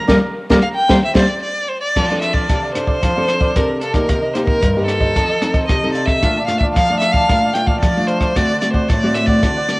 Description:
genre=samba and choro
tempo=112 BPM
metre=4/4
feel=straight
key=F major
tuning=A4 = 443 Hz
part: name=breathy reedy jazz flute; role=second line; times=0.1-1.2 s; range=Bb4 to C5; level=-20 LUFS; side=equal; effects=none
part: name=cavaquinho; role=accompaniment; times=0.1-9.7 s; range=D4 to A5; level=-24 LUFS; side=right 1 dB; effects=none
part: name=nylon-string guitar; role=accompaniment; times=0.1-9.8 s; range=G2 to A4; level=-19 LUFS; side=equal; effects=none
part: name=compact cocktail drum kit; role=drums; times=0.1-9.8 s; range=crash cymbal, hi-hat, kick drum, rim click, snare drum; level=-19 LUFS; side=equal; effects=cassette tape
part: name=rich violin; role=melody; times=0.6-9.8 s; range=A4 to G5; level=-18 LUFS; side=equal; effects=cassette tape
room=moderate spring reverb, RT60 1.5 s, small room ambience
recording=home recording on cassette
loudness=-14 LUFS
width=side -23 dB against mid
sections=0.0-2.0 A section; 2.0-9.8 B section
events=band accent 0.0-2.0; drum fill 0.9-2.0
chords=0.0 Gm7; 0.9 C7; 2.0 F6; 4.1 Cm7; 5.2 F7; 6.2 Bbmaj7; 8.4 D7

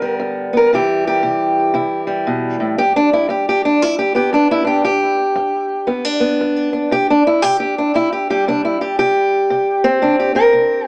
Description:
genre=acoustic country blues, solo or duo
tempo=116 BPM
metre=4/4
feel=swing 62% on 8ths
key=unclear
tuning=A4 = 440 Hz
part: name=fingerpicked acoustic archtop guitar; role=solo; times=0.0-10.9 s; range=G2 to Bb4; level=-16 LUFS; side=equal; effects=tape echo
room=moderate small room reverb, RT60 0.5 s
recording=cassette tape, small speaker sound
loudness=-16 LUFS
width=mono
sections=0.0-10.9 A section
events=none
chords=0.0 G; 0.7 C; 2.8 G; 6.9 C

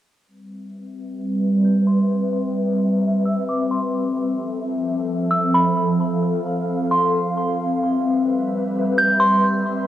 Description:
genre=hip hop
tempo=free time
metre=none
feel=none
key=C major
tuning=A4 = 439 Hz
part: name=glassy FM pad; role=sustained chords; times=1.0-9.9 s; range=F3 to F5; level=-19 LUFS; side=equal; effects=ensemble chorus, built-in reverb, phaser, low-pass filter, cassette tape
part: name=glassy synth bell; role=melody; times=1.6-9.4 s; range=B5 to G6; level=-21 LUFS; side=right 1 dB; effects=chorus, phaser, low-pass filter, analog delay
room=moderate lush hall reverb, RT60 2.7 s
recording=home recording on cassette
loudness=-18 LUFS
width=side -12 dB against mid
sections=0.3-9.9 A section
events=filter sweep 0.3-9.9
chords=0.3 Cmaj7; 3.9 Fmaj7; 7.6 Cmaj7

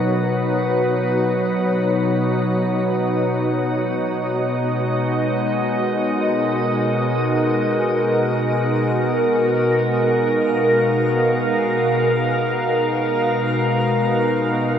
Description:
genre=ambient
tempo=free time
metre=none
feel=none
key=B lydian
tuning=A4 = 440 Hz
part: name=evolving wavetable pad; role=sustained chords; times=0.0-14.8 s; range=B2 to E#5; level=-18 LUFS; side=equal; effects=chorus, built-in reverb, shimmer reverb
part: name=organ-like drone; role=drone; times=0.0-14.8 s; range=B3 to F#4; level=-26 LUFS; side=equal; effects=ensemble chorus, built-in reverb
room=wet huge ambient reverb, RT60 8.8 s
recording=dreamy mix soaked in reverb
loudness=-17 LUFS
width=side -8 dB against mid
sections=0.0-14.8 A section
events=filter sweep on ambient pad 0.0-14.8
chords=0.0 B69

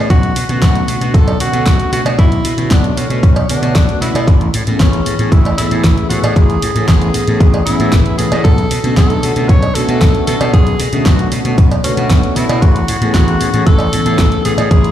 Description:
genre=nu-disco, nu disco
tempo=115 BPM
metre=4/4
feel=straight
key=B dorian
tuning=A4 = 440 Hz
part: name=mellow synth brass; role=accompaniment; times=0.0-14.8 s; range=D3 to C#5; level=-19 LUFS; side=left 2 dB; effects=chorus, sidechain pumping, tape echo
part: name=gritty slap bass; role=bass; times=0.0-14.9 s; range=A1 to B2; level=-16 LUFS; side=equal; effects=overdrive
part: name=breathy tenor saxophone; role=melody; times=0.1-14.9 s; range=C#4 to C#5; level=-19 LUFS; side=equal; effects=tape echo
part: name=electronic kick drum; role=drums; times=0.1-14.8 s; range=none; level=-11 LUFS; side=equal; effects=none
part: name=pop drum kit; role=drums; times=0.1-14.9 s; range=hi-hat, snare drum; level=-21 LUFS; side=equal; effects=none
part: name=cowbell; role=percussion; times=1.3-14.7 s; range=none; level=-23 LUFS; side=right 4 dB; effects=none
room=light reverb, digital ambience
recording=played on a big sound system in a bare room, large studio reverb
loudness=-10 LUFS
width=side -11 dB against mid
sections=0.0-14.9 A section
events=none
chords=0.1 Bm9; 4.3 Amaj9; 8.5 Bm9; 12.6 Amaj9

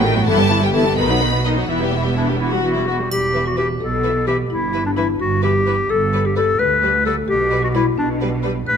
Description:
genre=cinematic, playful, whimsical film cue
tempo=86 BPM (dotted quarters)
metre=6/8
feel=straight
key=E minor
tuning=A4 = 440 Hz
part: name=marimba with soft mallets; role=melody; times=0.0-8.8 s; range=D4 to B4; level=-24 LUFS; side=left 6 dB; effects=none
part: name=rich studio violin section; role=melody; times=0.0-8.5 s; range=D5 to B5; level=-25 LUFS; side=left 2 dB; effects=none
part: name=rich studio violin section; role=second line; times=0.0-8.5 s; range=A3 to B4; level=-26 LUFS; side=left 3 dB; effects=none
part: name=rich studio viola section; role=accompaniment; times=0.0-8.5 s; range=D#3 to D#4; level=-24 LUFS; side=right 1 dB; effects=none
part: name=clear symphonic cello section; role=bass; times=0.0-8.8 s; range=D2 to B2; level=-24 LUFS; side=right 3 dB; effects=none
part: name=rich studio double bass section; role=bass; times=0.0-8.8 s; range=E1 to D2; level=-23 LUFS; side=right 4 dB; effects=none
part: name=bright clarinet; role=second line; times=2.2-8.8 s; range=D4 to B4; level=-19 LUFS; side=left 2 dB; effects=none
part: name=triangle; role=percussion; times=3.1-4.0 s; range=none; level=-32 LUFS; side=right 1 dB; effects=none
room=moderate scoring stage reverb, RT60 1.9 s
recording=close, detailed microphones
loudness=-15 LUFS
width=side -7 dB against mid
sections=0.0-3.1 A section; 3.1-8.8 B section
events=none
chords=0.3 Em/G; 1.0 B; 1.7 Em; 3.1 E5; 4.5 Em/G; 5.9 G; 7.3 G/B

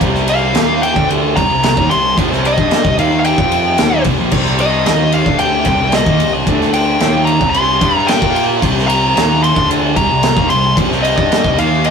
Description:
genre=quiet-loud alternative rock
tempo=112 BPM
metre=4/4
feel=straight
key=C minor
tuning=A4 = 440 Hz
part: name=raw garage guitar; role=riff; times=0.0-11.9 s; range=Bb2 to Bb4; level=-26 LUFS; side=right 1 dB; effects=none
part: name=thick fuzz guitar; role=riff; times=0.0-11.9 s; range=Bb2 to Bb4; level=-22 LUFS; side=left 5 dB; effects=distortion
part: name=thick fuzz guitar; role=riff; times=0.0-11.9 s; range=Bb2 to Bb4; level=-18 LUFS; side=right 3 dB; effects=distortion
part: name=growling fingered electric bass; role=bass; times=0.0-11.9 s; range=Bb1 to Bb2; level=-22 LUFS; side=right 1 dB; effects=overdrive
part: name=loose indie drum kit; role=drums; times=0.0-11.9 s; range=crash cymbal, kick drum, ride cymbal, snare drum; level=-15 LUFS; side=equal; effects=none
part: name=dark smooth lead guitar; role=melody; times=0.3-11.9 s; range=Eb5 to C6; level=-15 LUFS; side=left 2 dB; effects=overdrive
room=moderate studio reverb, RT60 0.5 s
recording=rough rehearsal-room recording, warm saturation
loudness=-11 LUFS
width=side -6 dB against mid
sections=0.0-11.9 A section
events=none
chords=0.0 Cm; 6.5 D5; 7.0 Cm

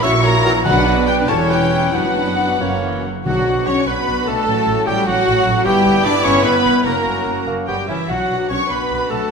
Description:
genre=classical, dramatic, fast romantic movement for symphony orchestra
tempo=89-102 BPM (dotted quarters)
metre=6/8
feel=rubato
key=B minor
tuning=A4 = 441 Hz
part: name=rich symphonic violin section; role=melody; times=0.0-9.3 s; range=E5 to D6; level=-22 LUFS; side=left 2 dB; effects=none
part: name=clear oboe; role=second line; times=0.0-9.3 s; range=E4 to E5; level=-25 LUFS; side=right 1 dB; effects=none
part: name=clear studio violin section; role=second line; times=0.0-9.3 s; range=E4 to D5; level=-27 LUFS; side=left 2 dB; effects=none
part: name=mellow hollow silver concert flute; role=second line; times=0.0-9.3 s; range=E5 to D6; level=-24 LUFS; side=equal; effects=none
part: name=warm clarinet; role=second line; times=0.0-9.3 s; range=C#4 to D5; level=-25 LUFS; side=left 2 dB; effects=none
part: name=rich studio viola section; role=accompaniment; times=0.0-9.3 s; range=E3 to D5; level=-26 LUFS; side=equal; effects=none
part: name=warm bassoon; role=accompaniment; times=0.0-3.0, 7.5-8.0 s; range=A#3 to E4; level=-25 LUFS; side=right 1 dB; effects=none
part: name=concert harp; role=arpeggios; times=0.0-9.3 s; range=E2 to E6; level=-29 LUFS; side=left 10 dB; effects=none
part: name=rich studio double bass section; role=bass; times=0.0-9.2 s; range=E1 to B1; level=-24 LUFS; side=right 4 dB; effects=none
part: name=rich symphonic cello section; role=bass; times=0.0-9.3 s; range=E2 to D4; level=-24 LUFS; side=right 2 dB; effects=none
part: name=mellow trombone section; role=sustained chords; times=0.4-9.3 s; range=F#2 to D4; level=-26 LUFS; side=right 4 dB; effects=none
part: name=warm French horn section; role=sustained chords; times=0.4-9.3 s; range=E3 to F#4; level=-25 LUFS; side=left 4 dB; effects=none
part: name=clear trumpet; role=stabs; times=0.4-9.3 s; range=E4 to C#5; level=-26 LUFS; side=right 2 dB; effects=none
part: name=timpani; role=percussion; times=0.7-1.2, 3.3-3.8 s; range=B2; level=-26 LUFS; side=right 1 dB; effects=none
room=moderate scoring stage reverb, RT60 1.6 s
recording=minimal, uncompressed stereo recording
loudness=-14 LUFS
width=side -5 dB against mid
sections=0.0-3.3 A section; 3.3-9.3 B section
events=none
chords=0.0 F#7/A#; 0.7 Bm; 1.3 C#dim/E; 1.9 Bm/F#; 2.6 F#; 3.3 Bm; 4.5 F#m/A; 5.7 Em/G; 6.9 F#; 8.1 Bm

